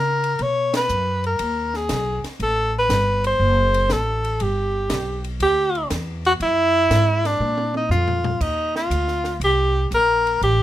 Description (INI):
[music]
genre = jazz, small-group swing and bop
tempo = 120 BPM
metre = 4/4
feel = swing 69% on 8ths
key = unclear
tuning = A4 = 440 Hz
[part]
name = breathy alto saxophone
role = melody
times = 0.0-10.6 s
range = D4 to C#5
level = -19 LUFS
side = equal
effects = none
[part]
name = upright bass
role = bass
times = 0.0-10.6 s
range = F#1 to C#3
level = -23 LUFS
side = right 1 dB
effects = none
[part]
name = compact cocktail drum kit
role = drums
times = 0.2-10.6 s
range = crash cymbal, hi-hat, kick drum, ride cymbal, snare drum, toms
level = -31 LUFS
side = equal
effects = none
[sound]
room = light reverb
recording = minimal, uncompressed stereo recording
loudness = -18 LUFS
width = side -13 dB against mid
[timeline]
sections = 0.0-8.4 A section; 8.4-10.6 B section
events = band accent 0.6; drum fill 7.4-8.4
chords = 0.4 Bmaj7; 2.4 Gadd9; 3.4 F#dim; 4.4 G6; 6.4 Eadd9/F#; 7.4 A#5; 8.4 Ebmaj7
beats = | 0.39 0.89 1.40 1.90 | 2.40 2.90 3.40 3.90 | 4.40 4.90 5.40 5.91 | 6.41 6.91 7.41 7.91 | 8.41 8.91 9.41 9.91 | 10.41